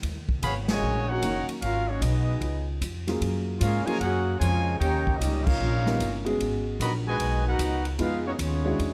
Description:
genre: jazz, big band swing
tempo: 151 BPM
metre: 4/4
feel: swing 65% on 8ths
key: Eb minor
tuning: A4 = 440 Hz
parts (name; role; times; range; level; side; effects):
- upright bass; bass; 0.0-8.9 s; Gb1 to Ab2; -30 LUFS; equal; none
- swinging big-band drum kit; drums; 0.0-8.9 s; crash cymbal, hi-hat, kick drum, ride cymbal, snare drum; -35 LUFS; equal; none
- warm trumpet section; melody; 0.4-8.9 s; Bb3 to Cb6; -33 LUFS; equal; none
- bright trombone section; second line; 0.4-8.9 s; Bb2 to G4; -34 LUFS; equal; none
- warm baby grand piano; accompaniment; 1.2-8.9 s; Eb3 to Db5; -32 LUFS; equal; none
room: moderate large studio reverb, RT60 1.2 s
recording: none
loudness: -26 LUFS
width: mono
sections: 0.0-8.9 A section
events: band accent 0.6, 5.4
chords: 0.0 Ebm7; 1.6 Abm7; 2.4 Db7; 3.2 Gbmaj9; 4.8 Eb7b13; 6.4 Abm11; 8.0 Fm7b5

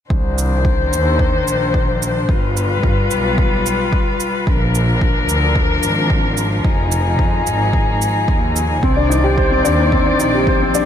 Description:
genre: piano and strings electronica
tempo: 110 BPM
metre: 4/4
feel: straight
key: C minor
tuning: A4 = 441 Hz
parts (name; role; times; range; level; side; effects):
- dark string quartet; sustained chords; 0.1-10.9 s; Eb3 to D5; -18 LUFS; left 2 dB; sidechain pumping, shimmer reverb
- clear studio double bass section; bass; 0.1-10.9 s; F1 to G2; -19 LUFS; equal; sidechain pumping
- electronic kick drum; drums; 0.1-10.6 s; none; -18 LUFS; equal; none
- shaker; drums; 0.4-10.9 s; none; -27 LUFS; right 10 dB; none
- dark upright piano; riff; 8.8-10.9 s; C4 to C5; -16 LUFS; left 2 dB; digital delay, shimmer reverb
room: light reverb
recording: none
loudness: -14 LUFS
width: side -9 dB against mid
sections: 0.1-10.9 A section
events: none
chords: 0.1 Cmadd9; 2.3 G7; 4.5 Bb; 6.7 Fm7; 8.8 Cmadd9

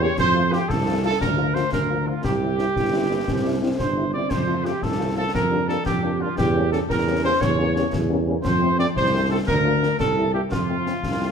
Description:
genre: military-style march for wind band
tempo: 116 BPM (dotted quarters)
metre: 6/8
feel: straight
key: F major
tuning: A4 = 441 Hz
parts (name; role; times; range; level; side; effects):
- mellow trumpet section; melody; 0.0-11.3 s; F4 to D5; -23 LUFS; right 1 dB; none
- mellow French horn section; accompaniment; 0.0-11.3 s; F3 to G4; -29 LUFS; left 5 dB; none
- mellow tuba; bass; 0.0-11.3 s; G1 to F2; -24 LUFS; right 2 dB; none
- concert snare drum, clash cymbals and concert bass drum; drums; 0.2-11.3 s; none; -28 LUFS; left 3 dB; none
- mellow euphonium; second line; 2.8-4.3 s; Bb3 to E4; -28 LUFS; right 2 dB; none
room: wet large studio reverb, RT60 1.4 s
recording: none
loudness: -19 LUFS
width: side -6 dB against mid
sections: 0.0-11.3 A section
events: none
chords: 0.2 F; 1.2 Bb/D; 2.2 C; 4.3 F; 5.3 Gm7/F; 6.4 Edim7; 8.4 F; 9.5 Bb/D; 10.0 C7; 10.5 F

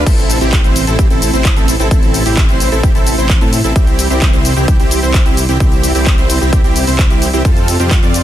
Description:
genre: EDM, festival progressive house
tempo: 130 BPM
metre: 4/4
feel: straight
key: C major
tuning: A4 = 440 Hz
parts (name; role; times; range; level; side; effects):
- dense compressed supersaw; riff; 0.0-8.2 s; C4 to D5; -16 LUFS; right 1 dB; sidechain pumping, tape echo
- detuned saw bass; bass; 0.0-8.2 s; A1 to A2; -16 LUFS; equal; sidechain pumping
- big-room dance drum kit; drums; 0.1-8.2 s; crash cymbal, handclaps, hi-hat, ride cymbal, shaker; -19 LUFS; left 1 dB; none
- electronic kick drum; drums; 0.1-8.0 s; none; -12 LUFS; equal; none
room: little or no reverb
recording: dense, heavily limited modern master, lossy compression artefacts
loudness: -9 LUFS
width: side -12 dB against mid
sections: 0.0-8.2 A section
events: none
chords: 0.1 Am; 3.8 C; 7.5 F

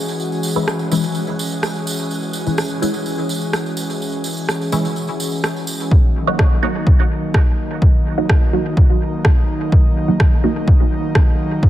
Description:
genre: dub techno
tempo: 126 BPM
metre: 4/4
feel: straight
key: Eb phrygian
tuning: A4 = 440 Hz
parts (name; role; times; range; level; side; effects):
- airy breathy pad; sustained chords; 0.0-11.7 s; Eb3 to Ab4; -23 LUFS; equal; chorus, sidechain pumping
- wind-like tuned noise texture; texture; 0.0-5.9 s; Gb4; -33 LUFS; left 2 dB; built-in reverb, sidechain pumping
- tambourine; percussion; 0.1-5.9 s; none; -28 LUFS; right 4 dB; none
- filtered dub chord stab; stabs; 0.6-10.6 s; Fb3 to Gb4; -22 LUFS; right 1 dB; phaser, sidechain pumping, dub echo
- electronic rim click; drums; 0.7-11.2 s; none; -24 LUFS; equal; dub echo
- electronic kick drum; drums; 5.9-11.7 s; none; -13 LUFS; equal; none
room: light reverb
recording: none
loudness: -15 LUFS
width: side -13 dB against mid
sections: 0.0-5.9 A section; 5.9-11.7 B section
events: filter sweep on synth stab 0.0-5.9, 5.9-11.7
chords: 0.0 Dbm; 5.9 Ebm

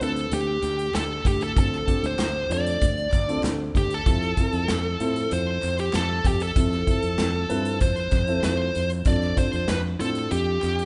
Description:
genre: piano-driven pop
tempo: 96 BPM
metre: 4/4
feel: straight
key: unclear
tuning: A4 = 441 Hz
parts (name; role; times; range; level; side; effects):
- high-gain lead guitar; melody; 0.0-10.9 s; G4 to D5; -29 LUFS; equal; distortion
- dark baby grand piano; accompaniment; 0.0-10.9 s; A2 to C5; -32 LUFS; equal; none
- fingered electric bass; bass; 0.0-10.9 s; D2 to A2; -31 LUFS; equal; none
- natural country drum kit; drums; 0.0-10.9 s; hi-hat, kick drum, snare drum; -28 LUFS; equal; none
- group handclap; percussion; 0.6-10.8 s; none; -45 LUFS; equal; none
room: moderate recital hall reverb, RT60 1.4 s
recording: recorded in a church or concert hall, nothing above 11.0 kHz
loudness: -24 LUFS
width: mono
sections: 0.0-10.9 A section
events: none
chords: 0.0 Dm7; 4.1 Fmaj7; 9.1 Dm7/F

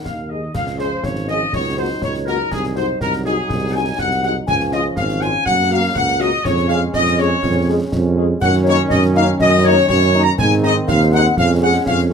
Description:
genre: military-style march for wind band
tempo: 122 BPM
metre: 2/4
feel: straight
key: Db major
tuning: A4 = 439 Hz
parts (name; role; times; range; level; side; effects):
- flute section; second line; 0.0-11.9 s; Ab4 to Bb5; -22 LUFS; left 2 dB; none
- warm trombone section; sustained chords; 0.0-12.1 s; Eb3 to Eb4; -25 LUFS; right 1 dB; none
- warm trumpet section; melody; 0.1-12.0 s; Ab4 to Bb5; -20 LUFS; left 3 dB; none
- dark tuba; bass; 0.1-12.1 s; Ab1 to Ab2; -18 LUFS; right 3 dB; none
- concert snare drum, concert bass drum and clash cymbals; drums; 0.1-12.1 s; none; -27 LUFS; left 1 dB; none
- mellow French horn section; accompaniment; 0.3-12.1 s; Ab3 to Ab4; -23 LUFS; left 4 dB; none
room: moderate large studio reverb, RT60 0.9 s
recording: close, detailed microphones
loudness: -14 LUFS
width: side -6 dB against mid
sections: 0.5-12.1 A section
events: none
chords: 0.0 Ab5; 0.5 Db; 1.5 Ebm7/Db; 2.5 Ab7/C; 4.5 Db; 5.5 Gb; 6.5 Db/F; 8.4 Ebm7/Gb; 10.4 Ab; 11.4 Db/F

